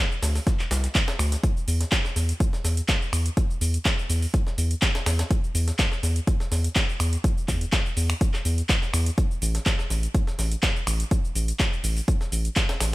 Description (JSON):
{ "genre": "progressive house", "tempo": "124 BPM", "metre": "4/4", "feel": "straight", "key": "unclear", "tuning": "A4 = 442 Hz", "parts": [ { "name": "house drum kit", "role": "drums", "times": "0.1-12.9 s", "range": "cabasa, finger snaps, handclaps, hi-hat", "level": "-28 LUFS", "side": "equal", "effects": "studio reverb" }, { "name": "round analog bass", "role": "bass", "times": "0.2-12.9 s", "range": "A1 to E2", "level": "-23 LUFS", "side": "equal", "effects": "tube saturation, sidechain pumping" }, { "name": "breakbeat sampler-style drum kit", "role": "drums", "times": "0.2-12.9 s", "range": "hi-hat, snare drum", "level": "-36 LUFS", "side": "equal", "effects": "high-pass filter on snare, studio reverb, sidechain pumping on hats, high-pass filter on hats" }, { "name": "electronic kick drum", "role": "drums", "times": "0.5-12.7 s", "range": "none", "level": "-24 LUFS", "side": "equal", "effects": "studio reverb" } ], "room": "little or no reverb", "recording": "none", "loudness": "-22 LUFS", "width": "side -19 dB against mid", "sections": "0.0-12.9 A section", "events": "none", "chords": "none", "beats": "0.47 0.95 | 1.44 1.92 2.40 2.89 | 3.37 3.85 4.34 4.82 | 5.31 5.79 6.28 6.76 | 7.24 7.73 8.21 8.69 | 9.18 9.66 10.15 10.63 | 11.11 11.60 12.08 12.56" }